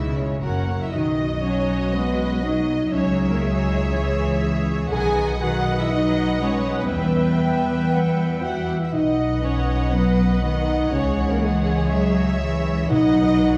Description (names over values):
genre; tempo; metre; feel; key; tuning
cinematic, heroic adventure film score; 120 BPM; 4/4; straight; B major; A4 = 440 Hz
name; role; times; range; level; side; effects
warm symphonic violin section; melody; 0.0-13.6 s; A#4 to G5; -34 LUFS; equal; none
rich symphonic violin section; second line; 0.0-13.6 s; C#4 to G#5; -35 LUFS; equal; none
rich studio viola section; accompaniment; 0.0-13.6 s; E3 to E5; -33 LUFS; equal; none
dark French horn section; sustained chords; 0.0-13.6 s; G#3 to G#4; -26 LUFS; equal; none
concert harp; arpeggios; 0.0-13.6 s; F#2 to B4; -33 LUFS; equal; none
rich symphonic cello section; bass; 0.0-13.6 s; F#2 to G#3; -28 LUFS; equal; none
rich symphonic double bass section; bass; 0.0-13.6 s; F#1 to E2; -27 LUFS; equal; none
mellow clarinet; second line; 0.4-13.6 s; G#4 to G#5; -34 LUFS; equal; none
concert flute; second line; 7.4-8.9 s; E5 to G5; -34 LUFS; equal; none
timpani; percussion; 12.9-13.6 s; B2; -29 LUFS; equal; none
room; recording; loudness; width
wet concert hall reverb, RT60 1.9 s; heard from further back in the room; -21 LUFS; mono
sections
0.9-13.6 A section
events
none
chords
0.4 F#; 0.9 B; 2.9 C#m; 4.9 B; 6.9 Em; 8.9 B; 10.9 C#m; 12.9 B